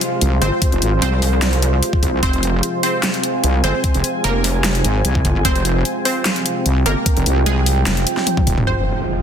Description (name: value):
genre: heavy wobble dubstep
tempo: 149 BPM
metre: 4/4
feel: half-time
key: F minor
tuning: A4 = 439 Hz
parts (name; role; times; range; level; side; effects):
- wide unison pluck; melody; 0.0-9.2 s; Ab3 to F5; -24 LUFS; right 1 dB; phaser, tape echo
- supersaw pad; sustained chords; 0.0-9.2 s; C3 to F4; -25 LUFS; equal; sidechain pumping, low-pass filter
- dubstep drum kit; drums; 0.0-8.7 s; handclaps, hi-hat, snare drum, toms; -21 LUFS; left 2 dB; none
- deep dark ambient pad; texture; 0.0-9.2 s; F4 to Ab5; -24 LUFS; right 3 dB; chorus, built-in reverb, sidechain pumping
- wobble bass; bass; 0.2-9.2 s; Eb1 to C2; -18 LUFS; equal; chorus, overdrive
- pulsing pluck wobble bass; bass; 0.4-6.9 s; F1 to C2; -18 LUFS; equal; chorus, overdrive
- electronic kick drum; drums; 0.6-8.6 s; none; -18 LUFS; equal; overdrive
- impact; sound effects; 8.7-9.2 s; none; -24 LUFS; equal; none
room: light reverb, digital ambience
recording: dense, heavily limited modern master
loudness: -15 LUFS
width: side -8 dB against mid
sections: 0.0-8.7 A section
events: drop 0.0-8.7; drum fill 8.3-8.7; impact 8.7-9.2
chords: 0.0 Fmadd9; 8.7 Fm